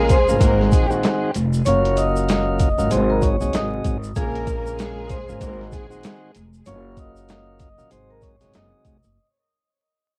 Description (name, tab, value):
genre	hip hop, boom-bap hip-hop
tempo	96 BPM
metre	4/4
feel	swing 60% on 16ths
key	unclear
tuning	A4 = 439 Hz
part	vibraphone with medium mallets	melody	0.0-8.8 s	Ab4 to Eb6	-26 LUFS	equal	tape echo
part	tonewheel organ	accompaniment	0.0-9.0 s	C3 to Gb4	-28 LUFS	equal	cassette tape
part	warm symphonic string section	stabs	0.0-6.0 s	Ab3 to Bb4	-31 LUFS	equal	cassette tape, tape echo
part	upright bass	bass	0.0-9.2 s	F1 to Bb1	-26 LUFS	equal	none
part	boom bap sampler-style drum kit	drums	0.1-9.0 s	handclaps, hi-hat, kick drum, snare drum	-24 LUFS	equal	cassette tape
part	tube shaker	percussion	0.1-9.2 s	none	-43 LUFS	equal	none
room	light reverb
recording	home recording on cassette, vinyl crackle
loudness	-20 LUFS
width	mono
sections	0.0-9.2 A section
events	fade-out 0.0-9.2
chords	0.4 Ab7; 1.7 Gbmaj7; 2.9 Ab7; 4.2 Bbm7; 5.4 Ab7; 6.7 Gbmaj7; 7.9 Ab7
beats	0.41 1.04 | 1.66 2.29 2.91 3.54 | 4.16 4.79 5.41 6.04 | 6.66 7.29 7.91 8.54